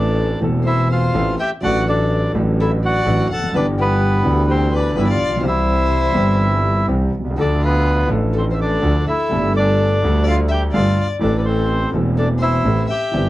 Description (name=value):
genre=tango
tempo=125 BPM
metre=4/4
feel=rubato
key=unclear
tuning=A4 = 441 Hz
part: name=bandoneon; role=melody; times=0.0-13.3 s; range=B3 to A5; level=-21 LUFS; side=right 1 dB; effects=none
part: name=warm violin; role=second line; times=0.0-13.3 s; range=F4 to F#5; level=-24 LUFS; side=left 5 dB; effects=none
part: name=warm concert grand piano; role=accompaniment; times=0.0-13.3 s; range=E1 to A4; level=-20 LUFS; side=equal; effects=none
part: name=clear double bass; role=bass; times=0.0-13.3 s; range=E1 to D2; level=-19 LUFS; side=right 1 dB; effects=none
room=moderate small room reverb, RT60 0.5 s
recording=dark, warm production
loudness=-15 LUFS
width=side -16 dB against mid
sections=0.0-13.3 A section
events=none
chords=0.0 Am; 1.6 D/A; 3.5 G6; 5.4 C; 7.4 Dm; 9.3 Gsus2; 11.2 Am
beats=0.17 0.65 1.13 | 1.62 2.10 2.58 3.05 | 3.53 4.00 4.48 4.95 | 5.43 5.91 6.39 6.88 | 7.37 7.86 8.35 8.83 | 9.31 9.79 10.27 10.74 | 11.21 11.69 12.16 12.64 | 13.12